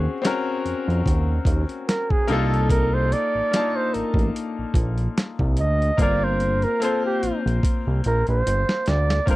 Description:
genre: R&B, neo-soul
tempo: 73 BPM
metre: 4/4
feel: swing 55% on 16ths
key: G minor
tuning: A4 = 438 Hz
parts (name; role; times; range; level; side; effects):
- bright baby grand piano; accompaniment; 0.0-9.4 s; Bb3 to A5; -27 LUFS; left 4 dB; none
- fat analog bass; bass; 0.0-9.4 s; G1 to F2; -22 LUFS; equal; none
- boom bap sampler-style drum kit; drums; 0.2-9.4 s; hi-hat, kick drum, snare drum; -23 LUFS; equal; none
- mellow flugelhorn; melody; 1.9-9.4 s; G4 to Eb5; -23 LUFS; right 2 dB; none
room: little or no reverb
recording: dry, close 1970s-style studio recording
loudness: -19 LUFS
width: side -18 dB against mid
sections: 0.0-9.3 A section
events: flugelhorn solo 0.0-9.3; drum fill 6.0-9.3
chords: 0.0 Ebm11; 2.3 Cm11; 6.0 Gm7

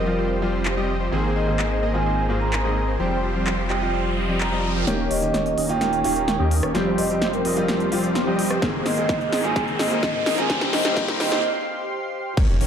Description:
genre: EDM, festival progressive house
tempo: 128 BPM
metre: 4/4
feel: straight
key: F minor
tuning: A4 = 440 Hz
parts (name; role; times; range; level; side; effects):
- vibraphone with soft mallets; melody; 0.0-11.4 s; Bb4 to Bb5; -27 LUFS; moving between left 4 dB and right 8 dB; auto-pan, ping-pong delay
- lush unison pad; sustained chords; 0.0-12.7 s; G4 to C6; -34 LUFS; left 1 dB; none
- supersaw chords; riff; 0.0-12.7 s; Eb3 to Eb5; -25 LUFS; equal; sidechain pumping, low-pass filter, ping-pong delay
- saturated sub bass; bass; 0.0-12.7 s; Eb1 to Ab2; -28 LUFS; equal; sidechain pumping
- clear baby grand piano; accompaniment; 0.1-11.4 s; G2 to Ab4; -28 LUFS; left 1 dB; sidechain pumping
- big-room dance drum kit; drums; 0.7-12.7 s; crash cymbal, handclaps, hi-hat, rim click, snare drum; -27 LUFS; equal; none
- riser and impact; sound effects; 2.5-12.7 s; none; -31 LUFS; equal; none
- electronic kick drum; drums; 8.6-12.5 s; none; -24 LUFS; equal; none
room: moderate lush hall reverb, RT60 1.8 s, digital ambience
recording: dark, warm production, high-pass filter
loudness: -20 LUFS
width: side -8 dB against mid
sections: 0.0-4.9 A section; 4.9-12.4 B section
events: riser 2.5-4.9, 4.9-11.4; build-up 4.9-12.4; drum fill 4.9-11.4; filter sweep on supersaw synth 4.9-12.4; filter sweep 4.9-12.4; break 11.4-12.4; impact 12.4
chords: 0.0 Fsus2; 1.1 Abadd9; 3.0 Fsus2; 4.9 Eb7; 6.7 Fsus2; 8.6 Abadd9; 10.5 Fsus2

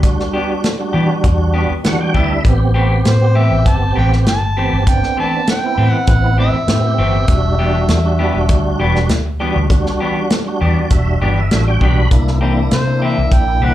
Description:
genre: straight-eighth soul blues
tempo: 99 BPM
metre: 4/4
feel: straight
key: E minor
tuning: A4 = 439 Hz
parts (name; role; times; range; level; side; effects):
- tonewheel organ; accompaniment; 0.0-13.7 s; G3 to B5; -20 LUFS; right 3 dB; slow rotary speaker, overdrive, chorus vibrato, slapback echo
- vintage muted fingered electric bass; bass; 0.0-13.7 s; E1 to E3; -15 LUFS; equal; none
- warm soul drum kit; drums; 0.0-13.5 s; hi-hat, kick drum, snare drum; -16 LUFS; equal; none
- clean electric guitar; stabs; 0.3-13.7 s; E3 to G4; -21 LUFS; left 5 dB; slapback echo
- overdriven harmonica; melody; 3.1-8.8, 12.7-13.7 s; C5 to A5; -20 LUFS; equal; slapback echo
room: light reverb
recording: live gig heard through the venue's PA, club reverb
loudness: -12 LUFS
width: side -13 dB against mid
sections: 0.0-13.7 A section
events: tonewheel organ fill 1.5-2.5, 10.3-12.1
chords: 0.0 Em7; 2.5 Am7; 7.3 Em7; 12.1 C7

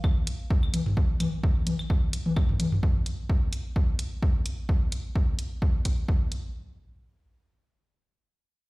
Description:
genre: minimal techno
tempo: 129 BPM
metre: 4/4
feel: swing 55% on 16ths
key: none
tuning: none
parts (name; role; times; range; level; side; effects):
- electronic kick drum; drums; 0.0-6.2 s; none; -24 LUFS; equal; none
- electronic claves and toms; percussion; 0.0-2.8 s; none; -29 LUFS; left 1 dB; overdrive, tape echo
- electronic hi-hat; drums; 0.3-6.4 s; none; -37 LUFS; right 1 dB; none
room: studio reverb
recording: played on a big sound system in a bare room, large studio reverb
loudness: -24 LUFS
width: side -22 dB against mid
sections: 0.0-6.5 A section; 6.5-8.7 B section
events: none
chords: none

